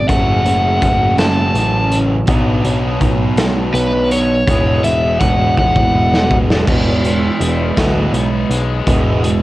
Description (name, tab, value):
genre	indie rock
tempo	55 BPM (dotted quarters)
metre	6/8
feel	straight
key	unclear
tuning	A4 = 441 Hz
part	overdriven electric guitar	melody	0.0-6.4 s	B4 to A5	-17 LUFS	equal	cassette tape
part	fuzz guitar	riff	0.0-9.4 s	E2 to G#4	-23 LUFS	left 6 dB	distortion
part	thick fuzz guitar	riff	0.0-9.4 s	F#2 to E4	-20 LUFS	right 5 dB	distortion, wide subtle chorus
part	growling picked electric bass	bass	0.0-9.4 s	E1 to D2	-17 LUFS	equal	overdrive
part	raw garage drum kit	drums	0.1-9.4 s	crash cymbal, hi-hat, kick drum, snare drum	-17 LUFS	equal	none
room	light reverb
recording	home recording on cassette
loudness	-12 LUFS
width	side -17 dB against mid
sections	0.0-6.7 A section; 6.7-9.4 B section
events	drum fill 5.6-6.7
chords	0.1 F#m; 2.3 Bm; 4.5 Eadd9